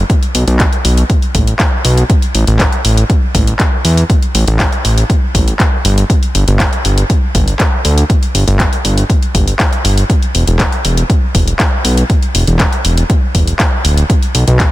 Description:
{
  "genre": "progressive house",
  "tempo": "120 BPM",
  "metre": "4/4",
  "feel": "straight",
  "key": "unclear",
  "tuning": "A4 = 442 Hz",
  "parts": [
    { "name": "fat analog bass", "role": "bass", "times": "0.0-14.7 s", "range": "D1 to E2", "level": "-11 LUFS", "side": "equal", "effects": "sidechain pumping" },
    { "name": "deep house drum kit", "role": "drums", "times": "0.1-14.7 s", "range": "handclaps, hi-hat", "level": "-17 LUFS", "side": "left 1 dB", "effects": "sidechain pumping on hats" },
    { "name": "electronic kick drum", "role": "drums", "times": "0.1-14.7 s", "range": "none", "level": "-12 LUFS", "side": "equal", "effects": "none" }
  ],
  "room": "little or no reverb",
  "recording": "dense, heavily limited modern master",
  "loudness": "-10 LUFS",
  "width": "side -16 dB against mid",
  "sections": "0.0-14.7 A section",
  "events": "none",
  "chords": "none"
}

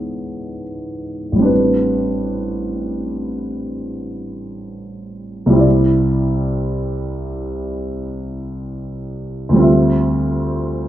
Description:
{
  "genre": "classical, impressionist solo piano",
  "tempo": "68-79 BPM",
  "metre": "5/4",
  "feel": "rubato",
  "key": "A minor",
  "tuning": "A4 = 442 Hz",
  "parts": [
    { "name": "warm grand piano", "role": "solo", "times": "0.0-10.9 s", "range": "A1 to E5", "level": "-17 LUFS", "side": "equal", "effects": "none" }
  ],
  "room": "wet recital hall reverb, RT60 1.4 s",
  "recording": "minimal, uncompressed stereo recording",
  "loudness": "-16 LUFS",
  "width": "side -12 dB against mid",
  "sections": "0.0-1.5 A section; 1.5-10.9 B section",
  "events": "none",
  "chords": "0.0 C#m9; 1.5 Am11; 5.6 Cadd9; 9.7 Dm11"
}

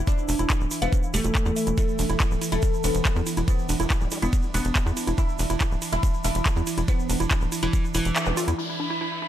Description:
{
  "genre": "psychedelic trance",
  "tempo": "141 BPM",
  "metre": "4/4",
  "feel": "straight",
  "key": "unclear",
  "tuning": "A4 = 444 Hz",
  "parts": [
    { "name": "evolving wavetable pad", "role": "sustained chords", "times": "0.0-9.3 s", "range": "E3 to E4", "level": "-33 LUFS", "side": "right 3 dB", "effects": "chorus, built-in reverb, sidechain pumping" },
    { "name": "tight sequencer bass", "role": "bass", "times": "0.0-8.5 s", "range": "D1 to E2", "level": "-26 LUFS", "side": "equal", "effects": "none" },
    { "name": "oud", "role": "melody", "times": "0.1-8.5 s", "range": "E3 to E4", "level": "-30 LUFS", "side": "equal", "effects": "phaser, vintage 12-bit sampler grit, sidechain pumping, ping-pong delay" },
    { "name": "woody wave-folded pluck", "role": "riff", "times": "0.1-9.3 s", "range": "D4 to F5", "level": "-32 LUFS", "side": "moving between left 5 dB and right 6 dB", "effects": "chorus, auto-pan, sidechain pumping, ping-pong delay" },
    { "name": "electronic kick drum", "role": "drums", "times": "0.1-7.8 s", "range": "none", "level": "-23 LUFS", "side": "equal", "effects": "none" },
    { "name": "garage drum kit", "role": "drums", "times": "0.1-8.6 s", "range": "handclaps, hi-hat, ride cymbal", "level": "-30 LUFS", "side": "equal", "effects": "low-pass filter on hats, low-pass filter on cymbals, low-pass filter on snare, low-pass filter on room" },
    { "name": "egg shaker", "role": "percussion", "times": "0.1-8.6 s", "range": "none", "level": "-36 LUFS", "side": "right 5 dB", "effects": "none" },
    { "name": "vowel-sweep wobble bass", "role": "second line", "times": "3.1-4.2 s", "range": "G3 to B3", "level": "-40 LUFS", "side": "left 3 dB", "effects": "analog chorus, sidechain pumping, high-pass filter, ping-pong delay" },
    { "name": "zap and downlifter", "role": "sound effects", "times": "8.3-9.3 s", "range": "none", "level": "-32 LUFS", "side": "equal", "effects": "none" },
    { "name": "rich studio string section", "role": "texture", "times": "8.6-9.3 s", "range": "E4 to B5", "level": "-32 LUFS", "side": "left 1 dB", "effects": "sidechain pumping" }
  ],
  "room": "little or no reverb",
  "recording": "none",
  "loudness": "-22 LUFS",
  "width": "side -11 dB against mid",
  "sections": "0.0-8.6 A section",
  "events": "drop 0.0-8.6; kick drops out 8.2-8.6; band accent 8.2",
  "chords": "0.0 E5"
}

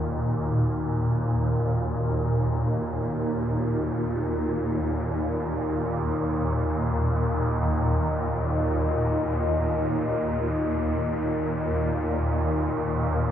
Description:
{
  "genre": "dark ambient drone",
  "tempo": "free time",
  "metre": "none",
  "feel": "none",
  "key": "Eb minor",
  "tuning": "A4 = 440 Hz",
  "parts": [
    { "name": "deep dark ambient pad", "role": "sustained chords", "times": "0.0-13.3 s", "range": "Eb4 to Ab5", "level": "-31 LUFS", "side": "equal", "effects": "chorus, built-in reverb" },
    { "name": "swarming drone", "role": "drone", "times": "0.0-13.3 s", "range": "Eb2 to Bb2", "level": "-24 LUFS", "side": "equal", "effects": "built-in reverb, phaser" },
    { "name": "bronze singing bowl", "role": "texture", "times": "0.0-13.3 s", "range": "Gb4", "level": "-46 LUFS", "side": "left 1 dB", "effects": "none" }
  ],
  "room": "wet cathedral reverb, RT60 6.6 s",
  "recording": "nothing above 10.4 kHz",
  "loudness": "-23 LUFS",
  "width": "side -10 dB against mid",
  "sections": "0.0-13.3 A section",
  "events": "fade-in on ambient pad 0.0-13.3",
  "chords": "0.0 Eb5"
}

